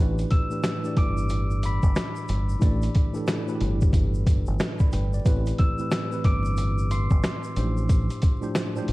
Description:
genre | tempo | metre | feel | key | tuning
hip hop, boom-bap hip-hop | 91 BPM | 4/4 | swing 62% on 16ths | unclear | A4 = 440 Hz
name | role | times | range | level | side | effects
tine electric piano | accompaniment | 0.0-8.9 s | G2 to B5 | -29 LUFS | equal | overdrive, fast stereo tremolo, high-pass filter, low-pass filter
deep dub fingered electric bass | bass | 0.0-8.9 s | G1 to A1 | -25 LUFS | equal | none
boom bap sampler-style drum kit | drums | 0.2-8.9 s | hi-hat, kick drum, snare drum | -23 LUFS | equal | vintage 12-bit sampler grit
tube shaker | percussion | 0.2-8.9 s | none | -50 LUFS | left 5 dB | none
glockenspiel with rubber mallets | melody | 0.3-7.9 s | B5 to E7 | -35 LUFS | left 2 dB | high-pass filter, low-pass filter, tape echo
room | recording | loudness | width
studio reverb | dark, warm production, vinyl crackle | -21 LUFS | side -20 dB against mid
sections
0.0-8.9 A section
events
none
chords
0.0 Em7; 5.3 Am7; 7.6 F6/A

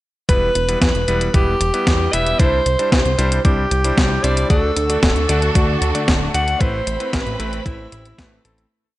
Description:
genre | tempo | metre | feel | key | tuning
italo disco | 114 BPM | 4/4 | straight | E minor | A4 = 442 Hz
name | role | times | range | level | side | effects
breathy alto saxophone | melody | 0.3-8.4 s | E4 to F#5 | -21 LUFS | right 1 dB | tape echo
clear electric grand piano | stabs | 0.3-8.6 s | G3 to D5 | -24 LUFS | left 2 dB | none
fat analog bass | bass | 0.3-8.7 s | D1 to E2 | -21 LUFS | equal | none
clean 12-bit digital drum machine | drums | 0.3-8.7 s | hi-hat, snare drum | -21 LUFS | equal | overdrive, studio reverb, gated reverb
electronic kick drum | drums | 0.3-8.3 s | none | -17 LUFS | equal | overdrive, studio reverb
rich symphonic string section | sustained chords | 4.5-8.7 s | D3 to B5 | -25 LUFS | right 2 dB | none
room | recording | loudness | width
light reverb, digital ambience | nothing above 10.4 kHz | -15 LUFS | side -16 dB against mid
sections
0.3-8.7 verse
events
fade-out 5.9-8.7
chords
0.3 Em; 2.4 Cadd9; 4.5 D; 6.6 Amadd9

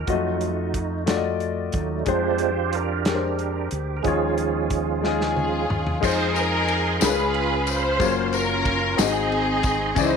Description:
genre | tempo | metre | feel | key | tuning
slow gospel | 61 BPM (dotted quarters) | 6/8 | straight | unclear | A4 = 440 Hz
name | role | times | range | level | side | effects
clear concert grand piano | accompaniment | 0.0-10.2 s | Ab2 to Eb5 | -26 LUFS | left 11 dB | none
bright tonewheel organ | sustained chords | 0.0-10.2 s | F3 to C6 | -27 LUFS | right 11 dB | slow rotary speaker, chorus vibrato
fingered electric bass | bass | 0.0-10.2 s | Gb1 to F2 | -29 LUFS | right 1 dB | none
warm soul drum kit | drums | 0.1-10.1 s | crash cymbal, hi-hat, kick drum, ride cymbal, snare drum, toms | -28 LUFS | right 1 dB | none
warm studio string section | melody | 5.1-10.2 s | C4 to C5 | -23 LUFS | equal | none
tambourine | percussion | 6.0-10.2 s | none | -31 LUFS | left 18 dB | none
room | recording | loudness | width
light reverb, small room reverb | 1960s-style stereo with parts hard left and right | -20 LUFS | side -6 dB against mid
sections
0.0-6.0 A section; 6.0-10.2 B section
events
tonewheel organ solo 0.0-6.0; drum fill 5.0-6.0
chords
0.1 F7b9; 2.1 Bb13/F; 4.0 Eb9sus4; 6.0 Fm7; 7.0 Db7; 8.0 Gbmaj7; 9.0 Ab7

